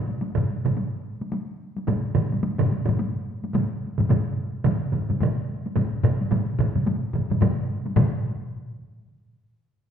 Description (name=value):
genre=japanese traditional, taiko drum ensemble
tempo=108 BPM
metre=4/4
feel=swing 60% on 16ths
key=none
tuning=none
part: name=taiko ensemble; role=percussion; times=0.1-8.2 s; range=none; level=-29 LUFS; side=left 1 dB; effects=none
part: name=taiko ensemble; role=percussion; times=0.4-8.5 s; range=none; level=-26 LUFS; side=left 3 dB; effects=none
part: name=taiko ensemble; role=percussion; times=0.4-8.5 s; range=none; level=-26 LUFS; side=right 4 dB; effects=none
room=wet scoring stage reverb, RT60 1.5 s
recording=minimal, uncompressed stereo recording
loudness=-22 LUFS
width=side -8 dB against mid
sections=0.0-8.0 A section; 8.0-9.9 B section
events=none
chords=none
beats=0.21 0.77 | 1.33 1.88 2.44 3.00 | 3.55 4.10 4.66 5.21 | 5.76 6.32 6.87 7.42 | 7.97